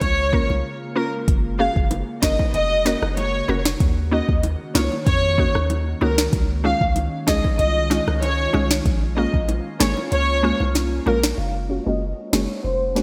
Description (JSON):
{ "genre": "dancehall", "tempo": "95 BPM", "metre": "4/4", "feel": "straight", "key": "unclear", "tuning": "A4 = 440 Hz", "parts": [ { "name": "warm studio violin section", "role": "melody", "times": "0.0-12.8 s", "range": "Bb4 to F5", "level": "-26 LUFS", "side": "equal", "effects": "low-pass filter, digital delay" }, { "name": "glassy FM pad", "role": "sustained chords", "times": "0.0-13.0 s", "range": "Db3 to Gb4", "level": "-34 LUFS", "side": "equal", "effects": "ensemble chorus, built-in reverb, low-pass filter" }, { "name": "warm 808-style bass", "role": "bass", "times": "0.0-13.0 s", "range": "F1 to F2", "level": "-26 LUFS", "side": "equal", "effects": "none" }, { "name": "afro-pop drum kit", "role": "drums", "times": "0.0-13.0 s", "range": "hi-hat, kick drum, rim click, snare drum", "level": "-24 LUFS", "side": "equal", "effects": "gated reverb" }, { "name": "mallet-like synth pluck", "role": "accompaniment", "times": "0.3-13.0 s", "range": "Ab3 to Bb4", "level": "-28 LUFS", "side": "equal", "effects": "chorus, low-pass filter" }, { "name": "bongos", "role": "percussion", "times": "0.5-11.2 s", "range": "none", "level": "-34 LUFS", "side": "equal", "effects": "none" } ], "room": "light reverb", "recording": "bright 1980s-style digital production", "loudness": "-21 LUFS", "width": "mono", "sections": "0.0-11.4 A section; 11.4-13.0 B section", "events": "break 0.6-1.3; kick muted 10.1-11.4; filter sweep 11.4-13.0", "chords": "0.0 Bbm7; 1.3 Gbadd9; 3.8 Ebm7; 6.3 Dbadd9; 8.9 Bbm7; 11.4 Gbadd9", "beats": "0.02 0.65 | 1.28 1.91 2.54 3.17 | 3.81 4.44 5.07 5.70 | 6.33 6.96 7.59 8.23 | 8.86 9.49 10.12 10.75 | 11.38 12.02 12.65" }